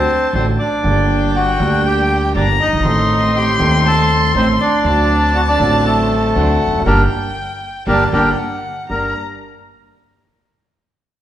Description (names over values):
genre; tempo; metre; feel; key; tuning
tango; 119 BPM; 4/4; rubato; G harmonic minor; A4 = 440 Hz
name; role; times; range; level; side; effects
bandoneon; melody; 0.0-9.1 s; A3 to A5; -16 LUFS; equal; none
warm violin; second line; 0.0-9.1 s; F#5 to C6; -22 LUFS; left 3 dB; none
dark concert grand piano; accompaniment; 0.0-9.1 s; Eb1 to A4; -19 LUFS; equal; none
clear symphonic string section; stabs; 0.0-9.1 s; F#3 to Eb4; -25 LUFS; right 3 dB; none
upright bass; bass; 0.0-9.1 s; E1 to Eb2; -20 LUFS; right 1 dB; none
room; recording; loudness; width
wet recital hall reverb, RT60 1.5 s; recorded in a church or concert hall; -13 LUFS; side -11 dB against mid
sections
0.0-8.9 A section; 8.9-10.9 B section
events
band accent 6.9-8.9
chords
0.0 D; 0.8 Gm; 2.9 Adim; 4.8 D7; 6.9 Gm; 8.4 N.C.; 8.9 Gm